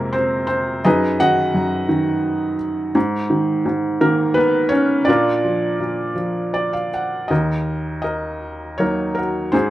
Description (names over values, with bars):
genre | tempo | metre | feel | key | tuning
classical, lyrical solo piano | 78-86 BPM | 3/4 | rubato | Eb minor | A4 = 441 Hz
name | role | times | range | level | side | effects
felt-muted upright piano | solo | 0.0-9.7 s | Eb2 to F#5 | -17 LUFS | equal | none
room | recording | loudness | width
light reverb | none | -17 LUFS | side -14 dB against mid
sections
0.0-7.3 A section; 7.3-9.7 B section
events
felt piano fill 6.2-7.3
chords
0.0 Fm; 0.9 B6/F#; 3.0 Abm; 5.1 Bb; 7.3 Ebm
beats
0.13 | 0.85 1.55 2.25 | 2.95 3.66 4.37 | 5.08 5.80 6.55 | 7.30 8.06 8.81 | 9.54